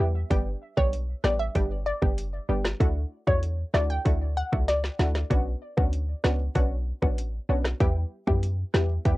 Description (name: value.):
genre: dancehall.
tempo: 96 BPM.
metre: 4/4.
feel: straight.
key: B minor.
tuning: A4 = 440 Hz.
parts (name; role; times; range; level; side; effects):
analog pluck; melody; 0.0-5.1 s; C#5 to G5; -29 LUFS; left 1 dB; chorus, cassette tape, analog delay.
punchy chord stab; accompaniment; 0.0-9.2 s; G3 to G4; -31 LUFS; equal; chorus.
clean 808-style bass; bass; 0.0-9.2 s; F#1 to F#2; -26 LUFS; equal; none.
island pop drum kit; drums; 0.3-9.2 s; hi-hat, kick drum, rim click, snare drum; -26 LUFS; equal; none.
room: little or no reverb.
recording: home recording on cassette.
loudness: -24 LUFS.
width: side -19 dB against mid.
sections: 0.0-9.2 A section.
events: drum fill 4.7-5.3.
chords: 0.3 G; 2.8 Dadd9; 5.3 Bmadd9; 7.8 Em.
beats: | 0.31 0.93 1.56 2.18 | 2.81 3.43 4.06 4.68 | 5.31 5.93 6.56 7.18 | 7.81 8.43 9.06.